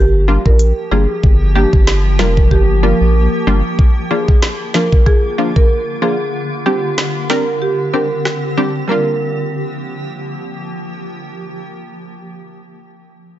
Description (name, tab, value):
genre	dancehall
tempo	94 BPM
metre	4/4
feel	swing 56% on 16ths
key	G minor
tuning	A4 = 437 Hz
part	marimba with medium mallets	melody	0.0-10.8 s	G4 to Bb4	-19 LUFS	right 2 dB	tape echo
part	granular cloud pad	sustained chords	0.2-12.1 s	D3 to G4	-23 LUFS	left 1 dB	built-in reverb, sidechain pumping
part	round analog bass	bass	0.0-3.6 s	F1 to Bb1	-13 LUFS	equal	none
part	punchy chord stab	accompaniment	0.3-12.2 s	F3 to Bb4	-19 LUFS	left 1 dB	chorus
part	island pop drum kit	drums	0.5-8.4 s	hi-hat, kick drum, rim click, snare drum	-12 LUFS	equal	none
room	digital ambience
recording	nothing above 7.7 kHz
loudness	-12 LUFS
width	side -13 dB against mid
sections	0.0-8.9 A section; 8.9-11.4 B section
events	none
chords	0.0 Gm7; 3.8 Bb; 6.3 Csus2; 8.9 Gm7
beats	0.60 | 1.23 1.87 2.51 3.15 | 3.79 4.42 5.06 5.70 | 6.34 6.98 7.62 8.26 | 8.89 9.53 10.17 10.81